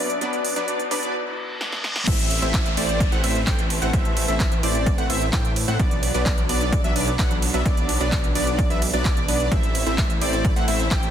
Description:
EDM, festival progressive house; 129 BPM; 4/4; straight; A dorian; A4 = 440 Hz
bright concert grand piano; accompaniment; 0.0-2.1 s; B2 to B4; -32 LUFS; left 3 dB; sidechain pumping, ping-pong delay
muted studio string section; sustained chords; 0.0-11.1 s; B2 to B4; -32 LUFS; equal; sidechain pumping
wide unison lead; arpeggios; 0.0-11.1 s; D5 to G5; -28 LUFS; equal; lush chorus, sidechain pumping, ping-pong delay
supersaw stab; riff; 0.0-11.1 s; F#3 to G5; -27 LUFS; right 1 dB; sidechain pumping, ping-pong delay
riser, reverse cymbal and downlifter; sound effects; 0.0-5.8 s; -31 LUFS; equal
big-room dance drum kit; drums; 0.1-11.1 s; crash cymbal, handclaps, hi-hat, ride cymbal, snare drum; -28 LUFS; right 2 dB; overdrive
wide detuned saw bass; bass; 2.1-11.1 s; A1 to A2; -26 LUFS; equal; chorus, sidechain pumping
electronic kick drum; drums; 2.1-11.0 s; -22 LUFS; equal; overdrive
light reverb; dense, heavily limited modern master, high-pass filter; -19 LUFS; side -9 dB against mid
0.0-2.1 A section; 2.1-11.1 B section
build-up 0.0-2.1; filter sweep on analog synth lead 0.0-2.1; filter sweep 0.0-2.1; break 1.1-2.1; reverse cymbal 1.1-2.1; drum fill 1.6-2.1; drop 2.1-11.1
0.0 Bm; 2.1 Am; 5.8 Bm; 9.5 Am

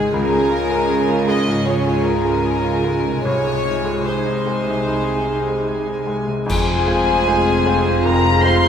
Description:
cinematic, emotional film score for orchestra; 76 BPM; 4/4; rubato; F minor; A4 = 440 Hz
warm studio violin section; melody; 0.0-8.7 s; Ab5 to C6; -25 LUFS; left 3 dB
warm symphonic violin section; second line; 0.0-8.7 s; Ab4 to Eb5; -24 LUFS; left 1 dB
bright grand piano; accompaniment; 0.0-8.7 s; C2 to C5; -23 LUFS; equal
dark chamber viola section; accompaniment; 0.0-8.7 s; Ab3 to F4; -23 LUFS; right 1 dB
concert harp; arpeggios; 0.0-8.7 s; C3 to C6; -30 LUFS; left 4 dB
rich symphonic cello section; bass; 0.0-8.7 s; F2 to Db3; -24 LUFS; right 2 dB
warm symphonic double bass section; bass; 0.0-8.7 s; F1 to Db2; -27 LUFS; right 3 dB
dark clarinet; second line; 6.5-8.7 s; Ab4; -27 LUFS; left 5 dB
mellow large flute ensemble; second line; 6.5-8.7 s; Ab5 to C6; -23 LUFS; left 2 dB
warm cor anglais; second line; 6.5-8.7 s; C5; -26 LUFS; equal
mellow French horn section; sustained chords; 6.5-8.7 s; C4 to F4; -22 LUFS; left 3 dB
clash cymbals and concert bass drum; percussion; 6.5-8.0 s; -26 LUFS; equal
wet scoring stage reverb, RT60 1.8 s; recorded in a church or concert hall; -16 LUFS; side -8 dB against mid
0.0-6.5 A section; 6.5-8.7 B section
band accent 6.5-7.3
0.1 Db6; 3.3 Ab/C; 6.5 Fm

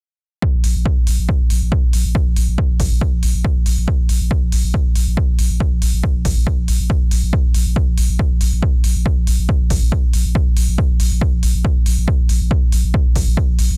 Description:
driving peak-time techno; 139 BPM; 4/4; straight; A4 = 443 Hz
electronic kick drum; drums; 0.4-13.5 s; -19 LUFS; equal
saturated sub bass; bass; 0.5-13.8 s; Bb1; -20 LUFS; equal; overdrive, sidechain pumping, low-pass filter
electronic hi-hat; drums; 0.6-13.7 s; -29 LUFS; equal
little or no reverb; dense, heavily limited modern master; -17 LUFS; mono
0.4-13.8 A section

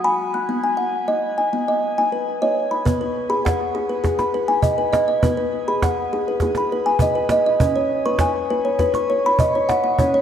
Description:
world meditative, meditative tuned percussion; 101 BPM; 4/4; straight; B major pentatonic; A4 = 437 Hz
kalimba; arpeggios; 0.0-10.2 s; F#3 to F#6; -18 LUFS; equal; diffuse ambient delay, shimmer reverb
cajon; percussion; 2.9-10.2 s; -22 LUFS; right 2 dB
wet scoring stage reverb, RT60 1.9 s, studio ambience; cassette tape; -17 LUFS; side -9 dB against mid
0.0-2.9 A section; 2.9-10.2 B section
0.5 B; 7.6 C#5

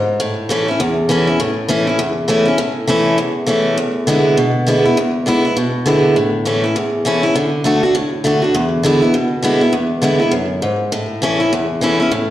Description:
rock; 202 BPM; 4/4; swing 61% on 8ths; A major; A4 = 440 Hz
picked steel-string acoustic guitar; solo; 0.0-12.3 s; E2 to F#4; -13 LUFS; equal; slapback echo
moderate club ambience, RT60 0.5 s; live gig heard through the venue's PA, recital hall reverb; -13 LUFS; side -13 dB against mid
0.0-1.4 A section; 1.4-10.9 B section; 10.9-12.3 A section
0.2 A; 3.8 E7; 6.2 A; 7.4 D; 8.5 E7; 10.9 A

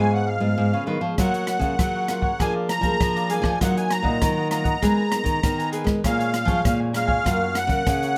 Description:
samba and choro; 99 BPM; 4/4; straight; F# major; A4 = 440 Hz
musette accordion; melody; 0.0-8.2 s; E#5 to A#5; -27 LUFS; equal
cavaquinho; accompaniment; 0.0-8.2 s; E#4 to G#5; -33 LUFS; equal
nylon-string guitar; accompaniment; 0.0-8.2 s; E#2 to A#4; -31 LUFS; equal
nylon-string guitar; bass; 0.0-8.2 s; F#2 to G#3; -27 LUFS; equal
open jazz drum kit; drums; 1.2-8.2 s; hi-hat, kick drum, rim click; -28 LUFS; equal
moderate studio ambience, RT60 0.5 s; -22 LUFS; mono
0.0-8.2 A section
0.0 C#7; 1.2 F#maj7; 2.4 A#7/E#; 3.6 D#madd9; 4.8 G#madd9; 6.0 A#m7; 7.3 F#maj7

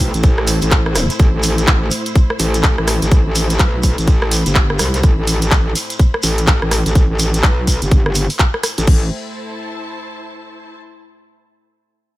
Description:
bass house; 125 BPM; 4/4; swing 61% on 16ths; A minor; A4 = 440 Hz
dark analog pad; sustained chords; 0.0-9.1 s; A3 to G5; -30 LUFS; equal; chorus, sidechain pumping
metallic wobble bass; bass; 0.0-9.1 s; G1 to C2; -17 LUFS; equal; chorus, overdrive, sidechain pumping
electronic kick drum; drums; 0.0-9.0 s; -12 LUFS; equal
shekere; percussion; 0.0-8.9 s; -24 LUFS; right 1 dB
rich symphonic string section; texture; 0.0-10.8 s; E4 to B5; -30 LUFS; equal; sidechain pumping
garage drum kit; drums; 0.1-9.0 s; crash cymbal, handclaps, hi-hat, rim click; -20 LUFS; equal
little or no reverb; -12 LUFS; side -17 dB against mid
0.0-8.9 A section; 8.9-10.8 B section
fade-out on string section 0.0-8.9
0.0 Am

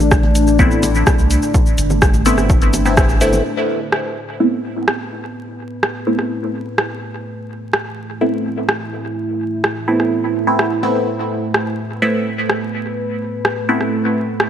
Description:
dub techno; 126 BPM; 4/4; straight; A minor; A4 = 440 Hz
deep dark ambient pad; sustained chords; 0.0-14.5 s; A3 to B4; -22 LUFS; equal; chorus, built-in reverb, sidechain pumping
filtered dub chord stab; stabs; 0.0-14.5 s; A3 to E4; -18 LUFS; equal; phaser, sidechain pumping, dub echo
soft dub sub bass; bass; 0.0-3.4 s; G1 to C2; -18 LUFS; equal; sidechain pumping
punchy analog drum machine; drums; 0.0-14.5 s; cabasa, hi-hat, rim click; -20 LUFS; equal; low-pass filter on perc, low-pass filter on hats, low-pass filter on snare, dub echo
bongos and congas; percussion; 0.0-3.4 s; -27 LUFS; left 1 dB
electronic kick drum; drums; 0.1-3.1 s; -15 LUFS; equal
moderate lush hall reverb, RT60 1.9 s, digital ambience; vinyl crackle; -15 LUFS; side -9 dB against mid
0.0-3.4 A section; 3.4-14.5 B section
band accent 3.0
0.0 Amadd9

